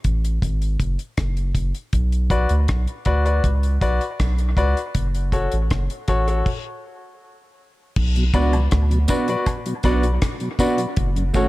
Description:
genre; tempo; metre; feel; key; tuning
dub reggae; 80 BPM; 4/4; straight; B dorian; A4 = 438 Hz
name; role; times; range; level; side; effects
soft dub sub bass; bass; 0.0-11.5 s; F#1 to D2; -20 LUFS; equal; none
deep reggae drum kit; drums; 0.0-11.5 s; crash cymbal, hi-hat, kick drum, rim click; -23 LUFS; equal; none
bright concert grand piano; stabs; 2.3-11.5 s; F#4 to D5; -25 LUFS; left 3 dB; dub echo
mellow tonewheel organ; accompaniment; 8.2-11.4 s; F#2 to F#4; -28 LUFS; equal; chorus vibrato, slow rotary speaker, dub echo
mellow electric guitar; accompaniment; 8.3-11.5 s; A3 to F#4; -25 LUFS; right 4 dB; dub echo
tambourine and woodblock; percussion; 8.3-11.5 s; none; -38 LUFS; right 1 dB; dub echo
room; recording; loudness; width
studio ambience; echo-heavy mix; -18 LUFS; side -18 dB against mid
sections
0.0-8.0 A section; 8.0-11.5 B section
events
break 0.0-8.0; stop 6.5-8.0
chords
0.0 F#m; 1.9 Bm; 4.9 F#m; 8.0 Bm; 11.0 F#m

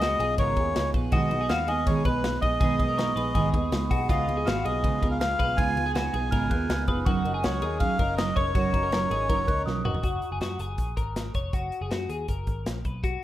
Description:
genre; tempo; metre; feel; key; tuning
jangly indie pop; 162 BPM; 4/4; straight; F# major; A4 = 442 Hz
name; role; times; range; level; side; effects
melodica; melody; 0.0-9.6 s; B4 to G#5; -28 LUFS; equal; none
picked steel-string acoustic guitar; accompaniment; 0.0-10.0 s; B2 to A#4; -30 LUFS; right 4 dB; none
string machine, full ensemble; sustained chords; 0.0-10.0 s; C#3 to A#4; -41 LUFS; equal; none
twelve-string electric guitar; arpeggios; 0.0-13.2 s; E#4 to D#5; -33 LUFS; left 3 dB; analog chorus, slapback echo
vintage muted picked electric bass; bass; 0.0-13.2 s; E#1 to F#2; -32 LUFS; equal; none
modern studio drum kit; drums; 0.0-13.1 s; hi-hat, kick drum, ride cymbal, snare drum, toms; -28 LUFS; equal; none
glockenspiel with rubber mallets; second line; 2.8-4.0, 6.3-10.0 s; A#5 to F#6; -38 LUFS; right 1 dB; none
room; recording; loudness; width
moderate digital room reverb, RT60 1.2 s, small room ambience; rough home demo mix; -23 LUFS; side -13 dB against mid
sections
0.0-10.0 A section; 10.0-13.2 B section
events
drum fill 9.7-10.0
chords
0.0 C#7; 1.1 G#m; 4.1 C#7; 10.0 F#

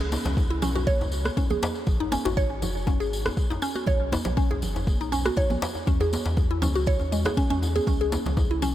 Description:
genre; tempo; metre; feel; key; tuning
afro house; 120 BPM; 4/4; swing 53% on 16ths; unclear; A4 = 438 Hz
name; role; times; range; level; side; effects
mallet-like synth pluck; arpeggios; 0.0-8.7 s; G#3 to C#5; -28 LUFS; equal; chorus, phaser, sidechain pumping, analog delay
warm sub bass; bass; 0.0-8.7 s; F#1 to E2; -28 LUFS; equal; sidechain pumping
congas; percussion; 0.1-8.7 s; none; -35 LUFS; right 3 dB; none
djembe; percussion; 0.1-8.5 s; none; -34 LUFS; left 2 dB; none
tambourine; percussion; 0.1-8.7 s; none; -40 LUFS; left 2 dB; none
electronic kick drum; drums; 0.4-8.5 s; none; -24 LUFS; equal; none
electronic rim click; drums; 1.3-7.3 s; none; -36 LUFS; right 1 dB; none
room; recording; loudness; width
light reverb, small room ambience; none; -22 LUFS; side -12 dB against mid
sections
0.0-8.7 A section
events
none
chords
0.0 N.C.; 1.9 G#5; 3.9 B5; 5.9 E6; 7.9 N.C.

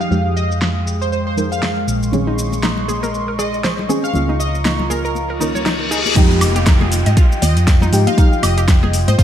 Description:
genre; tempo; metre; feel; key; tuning
deep house; 119 BPM; 4/4; swing 58% on 16ths; F minor; A4 = 440 Hz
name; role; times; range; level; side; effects
plucky unison lead; melody; 0.0-9.2 s; Ab4 to F5; -25 LUFS; equal; wide subtle chorus, ping-pong delay
warm analog pad; sustained chords; 0.0-9.2 s; Ab3 to Eb6; -24 LUFS; equal; chorus, sidechain pumping
deep mellow chord stab; stabs; 0.0-8.4 s; Eb3 to Bb4; -22 LUFS; equal; chorus, cassette tape, sidechain pumping, ping-pong delay
hollow-body short-scale fingered electric bass; bass; 0.0-9.2 s; F1 to Ab2; -19 LUFS; equal; sidechain pumping, low-pass filter
deep house drum kit; drums; 0.0-9.2 s; crash cymbal, hi-hat, shaker, snare drum, woodblock; -23 LUFS; equal; low-pass filter on hats, small room ambience, low-pass filter on perc, low-pass filter on snare, low-pass filter on cymbals
downlifter and reverse cymbal; sound effects; 0.0-9.2 s; none; -23 LUFS; left 2 dB; none
congas; percussion; 2.1-9.2 s; none; -26 LUFS; left 4 dB; none
analog pluck; arpeggios; 2.3-9.2 s; Eb4 to Eb5; -26 LUFS; right 1 dB; chorus, sidechain pumping, ping-pong delay
electronic kick drum; drums; 6.2-9.2 s; none; -12 LUFS; equal; small room ambience
room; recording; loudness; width
moderate lush hall reverb, RT60 1.6 s; dreamy mix soaked in reverb; -14 LUFS; side -10 dB against mid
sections
0.0-6.2 A section; 6.2-9.2 B section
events
reverse cymbal 5.4-6.2; drop 6.2-9.2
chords
0.0 Fm9; 1.9 Bbm11; 4.1 Db69; 6.2 Fm9

